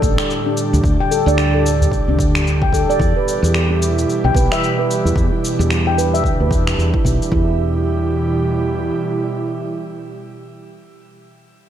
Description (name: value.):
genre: organic downtempo.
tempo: 111 BPM.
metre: 4/4.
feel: swing 59% on 16ths.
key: E minor.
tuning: A4 = 441 Hz.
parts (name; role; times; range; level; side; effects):
airy breathy pad; sustained chords; 0.0-11.2 s; A2 to G4; -22 LUFS; right 2 dB; chorus, sidechain pumping, shimmer reverb.
woody fretless electric bass; bass; 0.0-8.9 s; A1 to E2; -18 LUFS; equal; ensemble chorus.
electronic kick drum; drums; 0.0-7.4 s; none; -19 LUFS; equal; overdrive.
electronic shaker and finger snaps; drums; 0.0-7.3 s; none; -25 LUFS; left 1 dB; none.
handpan; arpeggios; 0.5-7.6 s; D4 to G5; -20 LUFS; equal; low-pass filter, ping-pong delay, shimmer reverb.
udu; percussion; 1.8-1.9 s; none; -18 LUFS; equal; none.
room: moderate lush hall reverb, RT60 2.0 s.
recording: dark, warm production.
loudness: -14 LUFS.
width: side -10 dB against mid.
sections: 0.0-7.3 A section; 7.3-11.6 B section.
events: filter sweep on handpan 0.0-7.3.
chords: 0.0 Dsus4; 3.0 Em.